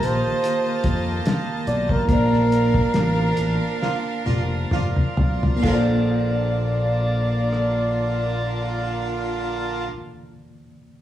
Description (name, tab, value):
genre	lush 1970s-style soul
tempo	64-74 BPM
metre	4/4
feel	swing 54% on 16ths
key	Bb major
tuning	A4 = 440 Hz
part	breathy flugelhorn	melody	0.0-9.9 s	Bb4 to D5	-25 LUFS	right 1 dB	none
part	clear studio violin section	second line	0.0-9.9 s	Bb3 to A5	-31 LUFS	right 2 dB	none
part	tine electric piano	accompaniment	0.0-11.0 s	Eb3 to A5	-28 LUFS	right 1 dB	overdrive, fast stereo tremolo
part	bright tonewheel organ	sustained chords	0.0-9.9 s	Bb2 to A5	-32 LUFS	right 1 dB	slow rotary speaker
part	fingered electric bass	bass	0.0-9.9 s	F1 to F2	-24 LUFS	equal	none
part	cloth-damped thuddy drum kit	drums	0.0-7.8 s	crash cymbal, hi-hat, kick drum, rim click, snare drum, toms	-23 LUFS	left 1 dB	none
part	warm horn section	stabs	3.8-9.9 s	D3 to F4	-30 LUFS	right 2 dB	none
room	wet large studio reverb, RT60 1.1 s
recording	band playing live in one room, small room ambience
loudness	-19 LUFS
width	side -12 dB against mid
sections	0.0-5.6 A section; 5.6-9.4 B section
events	slowing down 0.0-5.6; band accent 2.1-5.6; drum fill 3.8-5.6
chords	0.0 Ebadd9; 2.1 Bbmaj7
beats	0.43 1.25 | 2.09 2.94 3.81 4.71 | 5.64 6.58 7.52 8.46